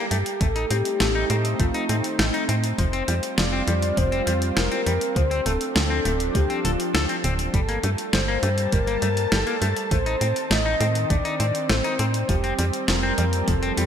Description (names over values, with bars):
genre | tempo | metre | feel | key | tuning
synthwave | 101 BPM | 4/4 | straight | unclear | A4 = 443 Hz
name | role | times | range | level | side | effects
soft octave-layered synth lead | melody | 0.0-13.9 s | Eb4 to Eb5 | -27 LUFS | left 2 dB | chorus, vintage 12-bit sampler grit, digital delay, shimmer reverb
lush unison pad | sustained chords | 0.0-13.9 s | Eb3 to A5 | -30 LUFS | right 1 dB | chorus, sidechain pumping, shimmer reverb
semi-hollow electric guitar | arpeggios | 0.0-13.8 s | F3 to A4 | -28 LUFS | left 3 dB | vintage 12-bit sampler grit, ping-pong delay, shimmer reverb
tight sequencer bass | bass | 0.1-13.9 s | D1 to A2 | -24 LUFS | equal | none
clean 12-bit digital drum machine | drums | 0.1-13.9 s | hi-hat, snare drum | -27 LUFS | equal | none
electronic kick drum | drums | 0.4-13.6 s | none | -24 LUFS | equal | none
room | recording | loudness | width
moderate lush hall reverb, RT60 1.9 s, digital ambience | bright 1980s-style digital production | -20 LUFS | side -8 dB against mid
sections
0.0-13.9 A section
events
none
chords
0.4 Adim; 2.8 Fsus2; 5.2 Dm7; 7.5 Gmadd9; 9.9 Adim; 12.3 Fsus2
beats
| 0.41 1.00 1.60 2.19 | 2.79 3.38 3.97 4.57 | 5.16 5.76 6.35 6.94 | 7.54 8.13 8.73 9.32 | 9.91 10.51 11.10 11.70 | 12.29 12.88 13.48